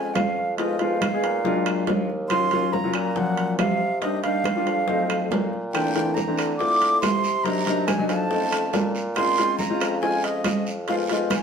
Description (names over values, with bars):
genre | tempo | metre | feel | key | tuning
Afro-Cuban jazz | 140 BPM | 4/4 | straight | unclear | A4 = 439 Hz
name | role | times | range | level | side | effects
breathy jazz flute | melody | 0.0-11.4 s | Eb5 to D6 | -25 LUFS | right 3 dB | none
warm grand piano | accompaniment | 0.0-11.3 s | E3 to Ab4 | -25 LUFS | left 3 dB | none
mellow bassoon | bass | 0.0-11.4 s | Eb2 to D3 | -29 LUFS | right 1 dB | none
bongos | percussion | 0.2-11.4 s | none | -34 LUFS | left 4 dB | none
claves | percussion | 0.2-11.4 s | none | -36 LUFS | right 6 dB | none
congas | percussion | 0.2-11.4 s | none | -30 LUFS | right 2 dB | none
timbales | percussion | 0.2-11.4 s | none | -32 LUFS | right 4 dB | none
guiro | percussion | 5.7-11.4 s | none | -36 LUFS | right 4 dB | none
room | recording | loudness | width
moderate stone room reverb, RT60 1.0 s | band playing live in one room | -20 LUFS | side -6 dB against mid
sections
0.0-11.4 A section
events
none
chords
0.0 Bbm9 (rootless); 0.6 Fm7b5; 1.4 Bb7b13; 2.3 Ebm9; 4.0 Cm9; 4.9 F7b9; 5.7 Bbmaj9#11; 7.5 Cm7b5; 8.3 F7b13; 9.2 Bbm9; 10.9 Fm7b5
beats
0.16 | 0.59 1.01 1.44 1.87 | 2.30 2.73 3.16 3.59 | 4.02 4.45 4.88 5.30 | 5.73 6.16 6.59 7.02 | 7.45 7.88 8.31 8.74 | 9.17 9.60 10.03 10.46 | 10.88 11.31